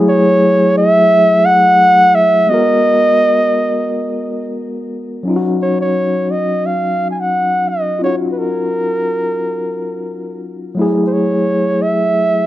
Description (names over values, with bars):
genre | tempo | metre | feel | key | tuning
R&B | 87 BPM | 4/4 | swing 58% on 16ths | Eb minor | A4 = 435 Hz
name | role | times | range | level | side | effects
overdriven tine electric piano | accompaniment | 0.0-12.5 s | Gb3 to Bb4 | -16 LUFS | left 1 dB | fast tremolo
warm flugelhorn | melody | 0.1-12.5 s | Bb4 to Ab5 | -13 LUFS | right 1 dB | none
room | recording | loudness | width
moderate studio reverb, RT60 0.6 s | rough home demo mix | -11 LUFS | side -14 dB against mid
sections
0.0-5.2 A section; 5.2-12.5 B section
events
none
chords
0.0 Gbm9; 2.5 Abm9; 5.2 Ebm9; 10.8 Gbm9